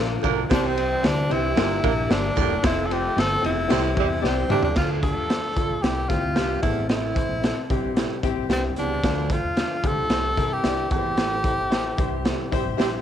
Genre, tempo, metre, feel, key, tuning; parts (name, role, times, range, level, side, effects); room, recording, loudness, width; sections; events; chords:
uptempo 1960s-style soul; 112 BPM; 4/4; straight; C mixolydian; A4 = 436 Hz
warm grand piano; accompaniment; 0.0-13.0 s; G2 to D5; -29 LUFS; left 11 dB
tonewheel organ; sustained chords; 0.0-13.0 s; C3 to A4; -34 LUFS; right 1 dB
upright bass; bass; 0.0-13.0 s; E1 to C3; -29 LUFS; equal
mellow horn section; second line; 0.2-4.9, 12.5-12.9 s; D3 to Bb4; -28 LUFS; right 13 dB
clear baritone saxophone; riff; 0.2-13.0 s; D2 to C3; -31 LUFS; right 13 dB
raw garage drum kit; drums; 0.2-12.9 s; crash cymbal, hi-hat, kick drum, ride cymbal, snare drum, toms; -25 LUFS; equal
breathy tenor saxophone; melody; 0.5-12.5 s; C4 to A4; -26 LUFS; equal; tape echo
light reverb, small room ambience; 1960s-style stereo with parts hard left and right; -20 LUFS; side -10 dB against mid
0.0-4.8 A section; 4.8-13.0 B section
drum fill 4.2-4.8; band accent 11.2-13.0
0.0 Bb; 0.5 C; 1.6 Gm; 2.6 F; 3.7 C; 4.8 Dm; 5.8 C; 6.6 Am; 7.7 C; 9.0 Dm; 10.1 C; 10.9 Am; 12.0 C